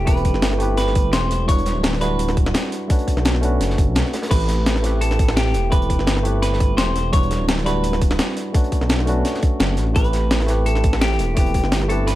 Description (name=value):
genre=liquid drum and bass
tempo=170 BPM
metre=4/4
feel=straight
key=A dorian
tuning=A4 = 440 Hz
part: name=clean electric guitar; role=melody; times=0.0-12.2 s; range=G4 to C#5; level=-25 LUFS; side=right 2 dB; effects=digital delay
part: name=mellow tine electric piano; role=accompaniment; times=0.0-12.2 s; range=G3 to B4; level=-25 LUFS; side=equal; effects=digital delay
part: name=dark detuned saw bass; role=bass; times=0.0-12.2 s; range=D1 to B1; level=-21 LUFS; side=equal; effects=none
part: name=breakbeat sampler-style drum kit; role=drums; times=0.1-12.2 s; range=crash cymbal, hi-hat, snare drum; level=-23 LUFS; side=equal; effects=small room ambience
part: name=crunchy breakbeat drum kit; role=drums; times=0.1-12.2 s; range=hi-hat, snare drum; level=-33 LUFS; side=equal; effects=high-pass filter on hats, small room ambience, high-pass filter on snare, high-pass filter on room
part: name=electronic kick drum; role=drums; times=0.1-11.6 s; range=none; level=-18 LUFS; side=equal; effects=small room ambience
room=little or no reverb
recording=none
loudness=-16 LUFS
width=side -15 dB against mid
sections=0.0-12.2 A section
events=none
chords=0.0 Am9; 1.5 Em9; 2.9 Bm9; 4.3 Am9; 7.1 Em9; 8.5 Bm9; 10.0 Am9